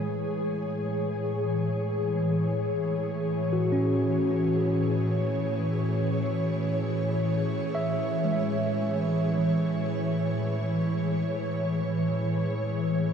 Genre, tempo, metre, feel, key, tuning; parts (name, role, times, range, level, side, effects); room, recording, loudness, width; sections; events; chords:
ambient; free time; A major; A4 = 439 Hz
ethereal airy pad; sustained chords; 0.0-13.1 s; A2 to C#5; -26 LUFS; equal; ensemble chorus, built-in reverb, shimmer reverb
tine electric piano; arpeggios; 0.0-13.1 s; E3 to E5; -31 LUFS; right 1 dB; medium tremolo, tape echo, shimmer reverb
wet huge ambient reverb, RT60 8.8 s; dreamy mix soaked in reverb; -25 LUFS; side -7 dB against mid
0.0-13.1 A section
0.0 Amaj7